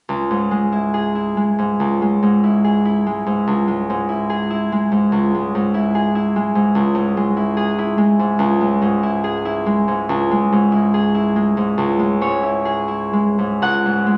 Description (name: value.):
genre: classical, solo harp piece.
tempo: 72 BPM.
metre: 4/4.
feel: rubato.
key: C# minor.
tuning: A4 = 439 Hz.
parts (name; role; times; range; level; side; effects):
Celtic harp; solo; 0.1-14.2 s; C#2 to F#5; -18 LUFS; equal; none.
room: wet recital hall reverb, RT60 1.4 s.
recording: nothing above 10.9 kHz.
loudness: -18 LUFS.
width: mono.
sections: 0.1-13.6 A section.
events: none.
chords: 0.1 C#m.